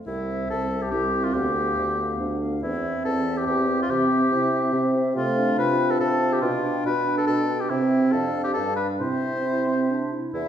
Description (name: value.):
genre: quick classical-period movement for wind quintet.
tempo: 141 BPM.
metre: 3/4.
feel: straight.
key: C major.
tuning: A4 = 440 Hz.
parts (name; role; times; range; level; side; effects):
warm oboe; second line; 0.1-10.5 s; E4 to C5; -25 LUFS; left 2 dB; none.
mellow French horn; accompaniment; 0.1-10.5 s; E3 to F4; -30 LUFS; left 1 dB; none.
mellow bassoon; bass; 0.1-10.5 s; C2 to C3; -27 LUFS; right 2 dB; none.
concert flute; melody; 0.3-10.5 s; E5 to G5; -36 LUFS; left 6 dB; none.
clear clarinet; accompaniment; 0.3-10.5 s; B3 to E4; -28 LUFS; right 3 dB; none.
room: wet recital hall reverb, RT60 1.3 s.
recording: heard from further back in the room.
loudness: -21 LUFS.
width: side -9 dB against mid.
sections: 0.1-10.3 A section.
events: none.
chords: 0.1 C; 1.3 G7/D; 2.6 C/E; 3.9 C; 5.2 Dm7/C; 6.4 G7/B; 7.7 C; 8.1 Dm/F; 8.6 G7; 9.0 C.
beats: | 0.06 0.49 0.92 | 1.34 1.77 2.20 | 2.62 3.04 3.47 | 3.89 4.31 4.74 | 5.16 5.58 6.00 | 6.42 6.85 7.28 | 7.70 8.13 8.56 | 9.01 9.46 9.90 | 10.34.